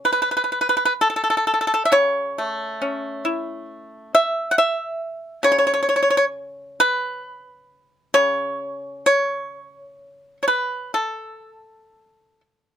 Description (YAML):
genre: chinese traditional, Chinese solo plucked strings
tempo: 58-70 BPM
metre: 4/4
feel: rubato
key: unclear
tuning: A4 = 441 Hz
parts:
  - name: pipa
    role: solo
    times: 0.0-12.4 s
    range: C#3 to F#5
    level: -18 LUFS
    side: equal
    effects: none
room: little or no reverb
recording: close, detailed microphones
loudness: -18 LUFS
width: side -9 dB against mid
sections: 0.0-12.8 A section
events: none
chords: none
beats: 0.10 1.02 | 1.94 2.82 3.70 4.57 | 5.45 6.34 7.25 8.16 | 9.09 10.02 10.96 11.95